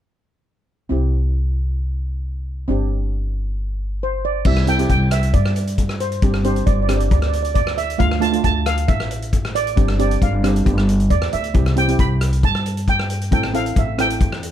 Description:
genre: calypso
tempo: 135 BPM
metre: 4/4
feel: straight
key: C major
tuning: A4 = 440 Hz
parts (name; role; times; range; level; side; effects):
- steel pan; accompaniment; 0.9-14.5 s; A3 to A4; -24 LUFS; right 2 dB; none
- upright bass; bass; 0.9-14.5 s; G1 to G2; -20 LUFS; equal; none
- steel pan; melody; 4.0-14.5 s; C5 to B5; -23 LUFS; right 3 dB; none
- warm soul drum kit; drums; 4.4-14.5 s; crash cymbal, hi-hat, kick drum, rim click; -21 LUFS; left 2 dB; none
room: little or no reverb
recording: none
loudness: -16 LUFS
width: side -10 dB against mid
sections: 0.9-4.5 A section; 4.5-14.5 B section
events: none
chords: 0.9 C; 2.7 Gsus4; 4.5 C; 6.2 Gsus4; 8.0 Dm; 9.8 G7sus4; 10.7 G7; 11.5 Cmaj7; 13.3 Am7

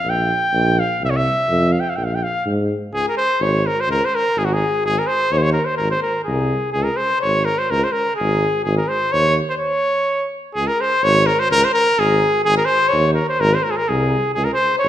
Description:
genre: balkan folk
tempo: 126 BPM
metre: 2/4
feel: swing 54% on 16ths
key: unclear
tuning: A4 = 440 Hz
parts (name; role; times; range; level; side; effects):
- clear trumpet; melody; 0.0-14.9 s; Gb4 to G5; -17 LUFS; equal; none
- warm tuba; bass; 0.0-14.9 s; Ab1 to Ab2; -21 LUFS; equal; none
room: wet recital hall reverb, RT60 1.7 s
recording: minimal, uncompressed stereo recording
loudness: -16 LUFS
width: side -11 dB against mid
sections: 0.0-2.9 A section; 2.9-10.6 B section; 10.6-14.9 B section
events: trumpet solo 0.0-2.9; stop 9.6-10.6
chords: 0.0 Bb5; 1.0 C; 2.0 Fmadd11/Bb; 2.9 Db5; 4.8 Ab; 6.8 Db5; 8.7 Ab5; 9.6 N.C.; 10.6 Db5; 12.5 Ab; 14.4 Db5

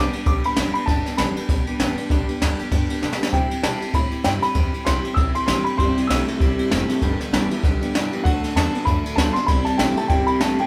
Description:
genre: rockabilly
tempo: 195 BPM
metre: 4/4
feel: swing 58% on 8ths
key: G major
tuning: A4 = 440 Hz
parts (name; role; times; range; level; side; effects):
- dark upright piano; melody; 0.0-10.7 s; F#5 to E6; -27 LUFS; equal; none
- picked steel-string acoustic guitar; accompaniment; 0.0-10.7 s; G2 to A4; -29 LUFS; equal; none
- upright bass; bass; 0.0-10.6 s; F1 to C3; -29 LUFS; equal; none
- jazz brush drum kit; drums; 0.1-10.6 s; kick drum, ride cymbal, snare drum; -24 LUFS; equal; none
- electric guitar through a small old amp; riff; 5.8-10.7 s; G2 to B3; -26 LUFS; equal; none
room: light reverb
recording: band playing live in one room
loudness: -21 LUFS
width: mono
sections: 0.0-10.7 A section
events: drum fill 3.0-3.3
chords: 0.0 G; 3.3 C; 7.0 G; 8.2 D; 9.5 C

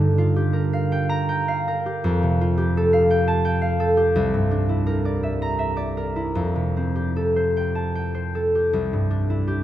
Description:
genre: classical, solo harp piece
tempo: 74-88 BPM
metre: 3/4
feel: rubato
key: unclear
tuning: A4 = 439 Hz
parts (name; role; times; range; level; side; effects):
- concert harp; solo; 0.0-9.6 s; C2 to Bb5; -19 LUFS; equal; none
room: wet cathedral reverb, RT60 5.1 s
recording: dark, warm production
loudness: -19 LUFS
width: side -12 dB against mid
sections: 0.0-9.6 A section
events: none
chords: 0.0 Gm7; 2.0 Fadd9; 4.2 C9; 6.4 Fadd9; 8.7 Cadd9

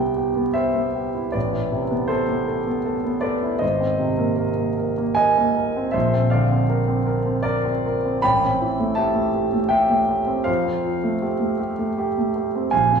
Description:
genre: classical, impressionist solo piano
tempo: 80 BPM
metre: 3/4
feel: rubato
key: unclear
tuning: A4 = 440 Hz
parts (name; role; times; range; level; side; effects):
- clear concert grand piano; solo; 0.0-13.0 s; Ab1 to B5; -19 LUFS; right 1 dB; none
room: wet recital hall reverb, RT60 1.8 s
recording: recorded in a church or concert hall, vinyl crackle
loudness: -19 LUFS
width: side -6 dB against mid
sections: 0.0-13.0 A section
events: none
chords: 0.0 Cmaj7; 1.4 Amadd9; 3.6 Abadd9; 5.9 Bbadd9; 8.2 Am7; 10.5 Fadd9

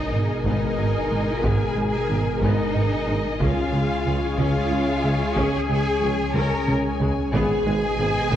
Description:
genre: cinematic, hybrid orchestral and electronic film score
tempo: 61 BPM (dotted quarters)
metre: 6/8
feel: straight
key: G# dorian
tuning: A4 = 440 Hz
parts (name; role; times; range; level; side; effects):
- dark symphonic violin section; melody; 0.0-8.4 s; G#5; -35 LUFS; left 4 dB; none
- warm symphonic violin section; second line; 0.0-8.4 s; D#5 to A#5; -31 LUFS; left 2 dB; none
- warm symphonic viola section; accompaniment; 0.0-8.4 s; G#3 to A#4; -32 LUFS; equal; none
- clear French horn section; sustained chords; 0.0-8.4 s; B2 to A#4; -31 LUFS; left 3 dB; none
- lush unison pad; sustained chords; 0.0-8.4 s; B2 to D#5; -29 LUFS; equal; chorus
- warm sub bass; bass; 0.0-8.4 s; G#1 to C#2; -33 LUFS; equal; none
- warm symphonic cello section; bass; 0.0-8.4 s; D#4 to A#4; -28 LUFS; equal; none
- sub drop; sound effects; 0.0-1.4 s; none; -40 LUFS; equal; none
- harp-like synth pluck; arpeggios; 0.1-8.4 s; C#3 to G#4; -31 LUFS; left 1 dB; chorus, tape echo
- rubbery square bass; riff; 0.1-8.4 s; C#2 to G#3; -29 LUFS; right 1 dB; none
- dark symphonic double bass section; bass; 0.1-8.4 s; G#1 to C#2; -29 LUFS; right 2 dB; none
- mellow tuba; bass; 0.1-8.4 s; G#1 to C#2; -30 LUFS; right 2 dB; none
- taiko ensemble; drums; 0.4-8.4 s; none; -30 LUFS; equal; none
room: wet scoring stage reverb, RT60 1.6 s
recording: worn, warbling old tape, cassette tape, warbly pitch drift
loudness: -20 LUFS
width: side -11 dB against mid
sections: 0.0-8.4 A section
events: impact 0.0-1.4; drum fill 6.4-7.3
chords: 0.0 G#madd9; 3.4 C#; 7.3 G#m

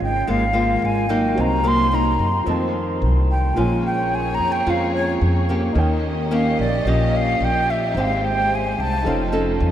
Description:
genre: bossa nova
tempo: 109 BPM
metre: 4/4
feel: straight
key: unclear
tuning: A4 = 440 Hz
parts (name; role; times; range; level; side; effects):
- breathy mellow silver concert flute; melody; 0.0-9.3 s; Db5 to C6; -22 LUFS; equal; none
- nylon-string guitar; accompaniment; 0.0-9.7 s; F2 to A4; -22 LUFS; equal; none
- warm baby grand piano; accompaniment; 0.0-9.7 s; Eb4 to Bb5; -32 LUFS; right 2 dB; none
- upright bass; bass; 0.0-9.7 s; F1 to Gb2; -22 LUFS; equal; none
- warm studio string section; sustained chords; 3.6-9.7 s; Ab3 to Eb5; -29 LUFS; equal; none
room: wet huge ambient reverb, RT60 7.2 s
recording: in a vast, echoing space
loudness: -17 LUFS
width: side -11 dB against mid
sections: 0.0-9.7 A section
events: flute solo 0.0-9.7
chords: 0.0 Db6; 1.4 Cm7b5; 2.5 F7; 3.6 Bbm7; 5.8 Eb7; 8.0 Abmaj7; 9.1 F7b13

